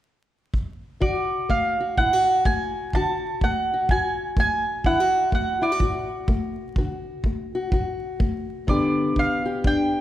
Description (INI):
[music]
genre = acoustic country blues, solo or duo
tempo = 125 BPM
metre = 4/4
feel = swing 60% on 8ths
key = unclear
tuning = A4 = 444 Hz
[part]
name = kick drum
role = drums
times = 0.5-9.8 s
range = none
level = -25 LUFS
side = equal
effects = none
[part]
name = mandolin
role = melody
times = 1.0-10.0 s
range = D5 to A5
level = -23 LUFS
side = right 2 dB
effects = none
[part]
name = fingerpicked acoustic archtop guitar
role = accompaniment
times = 1.0-10.0 s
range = G2 to G4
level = -26 LUFS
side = left 3 dB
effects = none
[sound]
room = moderate concert hall reverb, RT60 1.8 s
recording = recorded in a church or concert hall, vinyl crackle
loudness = -21 LUFS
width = side -13 dB against mid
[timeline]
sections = 0.0-1.0 A section; 1.0-10.0 B section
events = none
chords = 0.0 N.C.; 1.0 D; 8.7 G